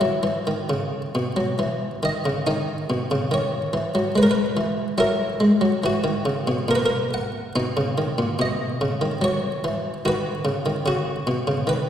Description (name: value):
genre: classical, baroque-style suite movement for harpsichord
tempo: 71 BPM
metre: 3/4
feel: uneven beats, rubato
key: B major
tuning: A4 = 439 Hz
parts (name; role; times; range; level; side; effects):
- buff-stop harpsichord; solo; 0.0-11.9 s; A#2 to F#5; -20 LUFS; equal; none
room: wet concert hall reverb, RT60 2.1 s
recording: heard from further back in the room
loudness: -20 LUFS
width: side -9 dB against mid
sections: 0.0-2.5 A section; 2.5-11.9 A section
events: none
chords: 0.0 B (rootless); 4.1 E/G#; 5.0 F#7; 7.6 B; 9.2 F#5; 10.0 B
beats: 0.69 1.58 | 2.46 3.31 4.15 | 4.99 5.84 6.69 | 7.57 8.40 9.22 | 10.04 10.86 11.68